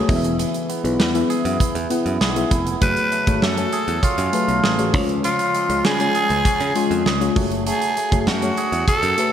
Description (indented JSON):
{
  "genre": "1980s-style pop",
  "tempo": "99 BPM",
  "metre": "4/4",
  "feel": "straight",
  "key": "unclear",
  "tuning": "A4 = 444 Hz",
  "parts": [
    { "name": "mellow FM electric piano", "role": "accompaniment", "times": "0.0-9.3 s", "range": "C#3 to G#5", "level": "-22 LUFS", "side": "left 4 dB", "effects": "chorus" },
    { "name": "clean electric guitar", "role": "riff", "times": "0.0-9.3 s", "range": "E3 to G#4", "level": "-27 LUFS", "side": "right 6 dB", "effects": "wide subtle chorus, digital delay" },
    { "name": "modern bright picked electric bass", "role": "bass", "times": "0.1-9.1 s", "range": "E1 to C#3", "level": "-25 LUFS", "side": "equal", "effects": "none" },
    { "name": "big rock drum kit", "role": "drums", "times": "0.1-9.3 s", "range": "hi-hat, kick drum, snare drum", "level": "-23 LUFS", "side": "right 1 dB", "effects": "none" },
    { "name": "raspy tenor saxophone", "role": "melody", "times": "2.8-9.3 s", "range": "E#4 to B4", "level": "-21 LUFS", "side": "right 1 dB", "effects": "digital delay" }
  ],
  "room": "moderate lush hall reverb, RT60 2.2 s",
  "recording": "bright 1980s-style digital production",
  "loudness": "-17 LUFS",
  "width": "side -9 dB against mid",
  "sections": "0.0-9.3 A section",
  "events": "FM electric piano fill 6.8-7.7",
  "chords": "0.1 E; 2.8 F#madd9; 4.9 C#; 7.4 F#madd9",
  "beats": "| 0.39 1.00 1.61 2.21 | 2.82 3.42 4.03 4.64 | 5.24 5.85 6.45 7.06 | 7.67 8.27 8.88"
}